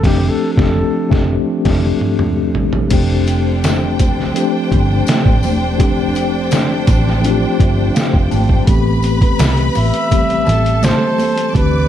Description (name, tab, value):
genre	lush 1970s-style soul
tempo	83 BPM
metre	4/4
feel	straight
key	unclear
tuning	A4 = 440 Hz
part	breathy flugelhorn	melody	0.0-1.2, 9.8-11.9 s	G4 to E5	-19 LUFS	equal	none
part	mellow tine electric piano	accompaniment	0.0-11.9 s	E3 to A5	-17 LUFS	left 3 dB	medium stereo tremolo
part	vintage muted fingered electric bass	bass	0.0-11.9 s	E1 to D2	-17 LUFS	equal	none
part	trip hop sampler-style drum kit	drums	0.0-11.7 s	crash cymbal, hi-hat, kick drum, snare drum, toms	-16 LUFS	equal	none
part	bright studio string section	second line	2.9-11.9 s	D4 to D6	-22 LUFS	right 1 dB	none
part	congas	percussion	2.9-11.7 s	none	-24 LUFS	right 4 dB	none
part	tambourine	percussion	2.9-11.4 s	none	-35 LUFS	left 15 dB	none
room	studio ambience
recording	dark, warm production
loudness	-12 LUFS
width	side -10 dB against mid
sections	0.0-2.9 A section; 2.9-8.7 B section; 8.7-11.9 C section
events	flugelhorn solo 0.0-2.9; band accent 0.0-2.9; drum fill 1.5-2.9; tine electric piano fill 7.2-8.7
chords	0.0 F69; 8.7 Am9